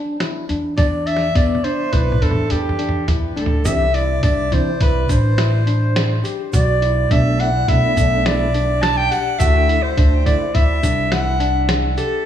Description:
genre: progressive instrumental, band music in an uneven meter.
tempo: 104 BPM.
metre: 5/4.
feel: straight.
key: E minor.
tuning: A4 = 440 Hz.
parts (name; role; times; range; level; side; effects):
tine electric piano; arpeggios; 0.0-12.2 s; B3 to G4; -25 LUFS; left 3 dB; medium stereo tremolo, diffuse ambient delay.
lo-fi sampler-style drum kit; drums; 0.2-12.1 s; hi-hat, kick drum, snare drum, toms; -21 LUFS; equal; none.
upright bass; bass; 0.5-11.9 s; A1 to D3; -19 LUFS; equal; none.
breathy soprano saxophone; melody; 0.8-12.3 s; G4 to A5; -20 LUFS; equal; diffuse ambient delay.
tonewheel organ; accompaniment; 3.6-10.5 s; B2 to E4; -26 LUFS; right 5 dB; overdrive, chorus vibrato, slow rotary speaker.
egg shaker; percussion; 3.7-12.1 s; none; -36 LUFS; right 10 dB; none.
room: moderate plate reverb, RT60 1.7 s, small room reverb.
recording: dreamy mix soaked in reverb, small room ambience.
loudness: -15 LUFS.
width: side -10 dB against mid.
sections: 0.0-3.7 A section; 3.7-12.3 B section.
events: drum fill 0.8-3.7.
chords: 0.0 E5; 0.8 E7(no3); 3.7 Cadd9; 6.5 Bm7; 9.4 Dsus2.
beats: 0.21 | 0.78 1.36 1.93 2.51 3.08 | 3.66 4.23 4.81 5.38 5.96 | 6.53 7.10 7.68 8.25 8.82 | 9.40 9.97 10.54 11.12 11.69.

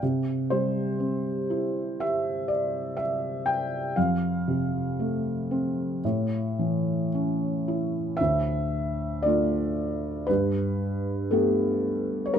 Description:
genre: classical, lyrical solo piano.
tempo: 55-61 BPM.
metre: 4/4.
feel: rubato.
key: unclear.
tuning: A4 = 444 Hz.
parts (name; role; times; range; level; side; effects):
felt-muted upright piano; solo; 0.0-12.4 s; D2 to G5; -24 LUFS; equal; none.
room: moderate recital hall reverb, RT60 1.4 s.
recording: close, detailed microphones.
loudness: -24 LUFS.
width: side -8 dB against mid.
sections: 0.0-8.2 A section; 8.2-12.4 B section.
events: none.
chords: 0.0 C; 4.0 F; 6.0 A; 8.2 Dm; 10.3 Gadd9.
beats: | 0.02 1.00 1.99 2.98 | 3.96 4.98 6.04 7.12 | 8.19 9.24 10.29 11.32 | 12.35.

